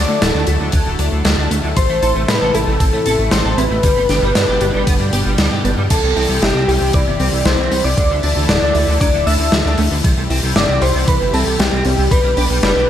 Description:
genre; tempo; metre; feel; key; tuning
synthwave; 116 BPM; 4/4; straight; unclear; A4 = 440 Hz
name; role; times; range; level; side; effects
warm velvety synth lead; melody; 0.0-12.9 s; G4 to E5; -19 LUFS; left 1 dB; chorus, digital delay
FM electric piano with soft pad layer; second line; 0.0-12.9 s; G5 to E6; -27 LUFS; right 1 dB; chorus, cassette tape, digital delay
analog string pad; sustained chords; 0.0-12.9 s; B2 to A4; -23 LUFS; left 2 dB; ensemble chorus, sidechain pumping
soft round pluck; arpeggios; 0.0-12.9 s; D3 to E5; -26 LUFS; right 2 dB; chorus, vintage 12-bit sampler grit, digital delay
clean electric guitar; riff; 0.0-12.9 s; C3 to A4; -26 LUFS; right 2 dB; ensemble chorus, digital delay
chorused synth bass; bass; 0.0-12.9 s; D1 to A2; -18 LUFS; equal; tube saturation
big rock drum kit; drums; 0.2-12.7 s; crash cymbal, hi-hat, snare drum; -20 LUFS; left 1 dB; gated reverb
electronic kick drum; drums; 0.7-12.2 s; none; -16 LUFS; equal; none
room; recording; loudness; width
light reverb; none; -13 LUFS; side -10 dB against mid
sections
0.0-5.9 A section; 5.9-12.9 B section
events
filter sweep on synth arpeggio sound 0.0-5.9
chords
0.0 D; 1.8 Am; 3.8 G; 5.9 C; 8.0 Dsus2; 10.0 C; 12.1 G

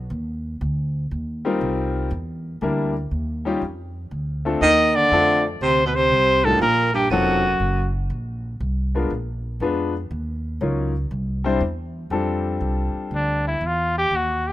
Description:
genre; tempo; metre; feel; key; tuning
jazz, small-group swing and bop; 120 BPM; 4/4; swing 67% on 8ths; unclear; A4 = 440 Hz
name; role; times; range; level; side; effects
upright bass; bass; 0.0-14.5 s; F1 to F2; -26 LUFS; right 1 dB; none
bright upright piano; accompaniment; 1.4-13.5 s; Gb3 to C5; -24 LUFS; left 3 dB; plate reverb
clear trumpet; melody; 4.6-7.9, 13.2-14.5 s; D4 to Eb5; -18 LUFS; left 1 dB; plate reverb
clear baritone saxophone; second line; 4.6-7.9 s; Gb2 to Eb3; -22 LUFS; right 4 dB; plate reverb
room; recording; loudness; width
light reverb; rough home demo mix; -19 LUFS; side -14 dB against mid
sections
0.0-12.1 A section; 12.1-14.5 B section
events
trumpet solo 12.1-14.5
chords
0.1 Eb69; 2.1 Em7b5; 3.1 Eb9; 4.1 Dm7; 6.1 Cm11; 7.1 F7b9; 8.1 Bbadd9; 9.1 Bb7b9; 10.1 Ebm7; 11.1 C; 12.1 F6

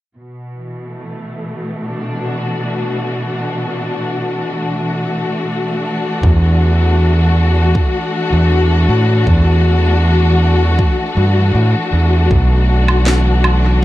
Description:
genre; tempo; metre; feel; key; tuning
ambient dub; 79 BPM; 4/4; straight; B minor; A4 = 440 Hz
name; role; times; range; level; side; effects
dark symphonic string section; sustained chords; 0.2-13.8 s; B2 to F#4; -18 LUFS; left 2 dB; low-pass filter
overdriven fingered electric bass; bass; 6.2-13.8 s; B1 to A2; -11 LUFS; equal; none
electronic kick drum; drums; 6.2-13.8 s; none; -14 LUFS; equal; none
electronic woodblock and snare drum; drums; 12.9-13.6 s; none; -19 LUFS; right 2 dB; dub echo
room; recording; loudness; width
light reverb; none; -12 LUFS; side -16 dB against mid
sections
0.2-12.3 A section; 12.3-13.8 B section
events
filter sweep on string section 0.2-12.3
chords
0.2 Bm7; 6.2 E7sus2; 12.3 Bm7

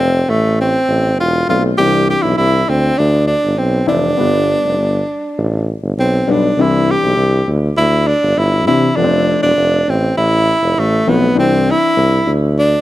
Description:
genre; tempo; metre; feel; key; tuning
uptempo 1960s-style soul; 100 BPM; 4/4; straight; C major; A4 = 440 Hz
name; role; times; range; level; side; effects
breathy tenor saxophone; melody; 0.0-12.8 s; A3 to G4; -14 LUFS; right 1 dB; none
dark baby grand piano; accompaniment; 0.0-12.1 s; E3 to F4; -18 LUFS; left 5 dB; none
warm tuba; bass; 0.0-12.7 s; E1 to C3; -16 LUFS; equal; none
room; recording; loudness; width
light reverb, studio reverb; none; -12 LUFS; side -15 dB against mid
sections
0.0-12.8 A section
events
none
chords
0.0 F; 1.8 Cadd9; 4.2 G; 6.6 Cadd9; 9.0 F; 11.4 Cadd9

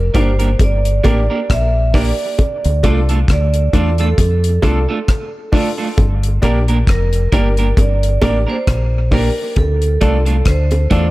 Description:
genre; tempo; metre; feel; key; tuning
dub reggae; 67 BPM; 4/4; swing 56% on 16ths; G dorian; A4 = 440 Hz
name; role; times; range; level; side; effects
vibraphone with hard mallets; melody; 0.0-11.1 s; A4 to E5; -22 LUFS; right 2 dB; dub echo
warm upright piano; stabs; 0.0-11.1 s; D4 to D5; -25 LUFS; left 2 dB; dub echo
deep dub fingered electric bass; bass; 0.0-11.1 s; F1 to F2; -15 LUFS; equal; none
electric guitar at the edge of break-up; accompaniment; 0.1-11.1 s; A3 to Bb4; -22 LUFS; right 4 dB; dub echo
deep reggae drum kit; drums; 0.1-11.1 s; hi-hat, kick drum, rim click; -16 LUFS; equal; none
bongos; percussion; 0.2-11.1 s; none; -26 LUFS; right 2 dB; dub echo
room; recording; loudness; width
studio ambience; none; -12 LUFS; side -18 dB against mid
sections
0.0-11.1 A section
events
none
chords
0.0 Gm; 2.4 Dm; 6.0 Gm; 9.6 Dm

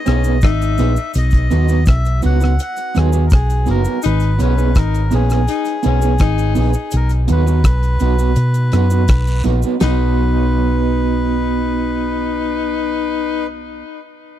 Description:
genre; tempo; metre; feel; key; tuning
roots reggae; 83 BPM; 4/4; straight; B major; A4 = 441 Hz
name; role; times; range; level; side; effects
melodica; melody; 0.0-13.5 s; G#4 to F#5; -25 LUFS; equal; tape echo
breathy tenor saxophone; second line; 0.1-13.5 s; C#4 to D#4; -23 LUFS; left 15 dB; tape echo
electric guitar at the edge of break-up; accompaniment; 0.1-13.9 s; B3 to B4; -21 LUFS; right 5 dB; tremolo, tape echo
hollow-body short-scale fingered electric bass; bass; 0.1-13.8 s; F#1 to B2; -15 LUFS; equal; none
damped 70s drum kit; drums; 0.1-10.0 s; hi-hat, kick drum, rim click, snare drum, splash cymbal; -15 LUFS; equal; none
cabasa and guiro; percussion; 0.1-10.1 s; none; -36 LUFS; right 4 dB; none
room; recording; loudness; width
small room ambience; dry, close 1970s-style studio recording; -13 LUFS; side -11 dB against mid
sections
0.0-9.8 A section; 9.8-12.7 B section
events
none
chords
0.0 G#m; 1.1 B; 4.0 G#m; 6.9 B

